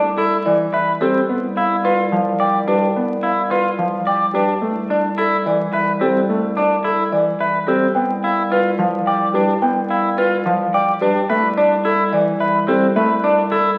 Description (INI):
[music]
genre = classical, minimalist pattern music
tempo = 108 BPM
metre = 3/4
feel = straight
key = C major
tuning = A4 = 443 Hz
[part]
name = marimba with medium mallets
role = melody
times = 0.0-13.7 s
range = A4 to G5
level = -22 LUFS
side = equal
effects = none
[part]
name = electric guitar at the edge of break-up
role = arpeggios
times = 0.0-13.7 s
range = C4 to D5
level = -21 LUFS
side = equal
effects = none
[part]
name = warm bass clarinet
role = bass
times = 0.0-13.8 s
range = C2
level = -26 LUFS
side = equal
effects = none
[part]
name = clear concert grand piano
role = accompaniment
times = 0.5-13.1 s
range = E3 to B3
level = -27 LUFS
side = equal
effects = none
[sound]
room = wet recital hall reverb, RT60 1.7 s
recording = very old 78 rpm record, vinyl crackle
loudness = -18 LUFS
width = mono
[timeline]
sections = 0.0-13.8 A section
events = none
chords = 0.0 C69; 1.3 G7/C (rootless); 4.6 C69; 8.0 G7/C; 11.3 C69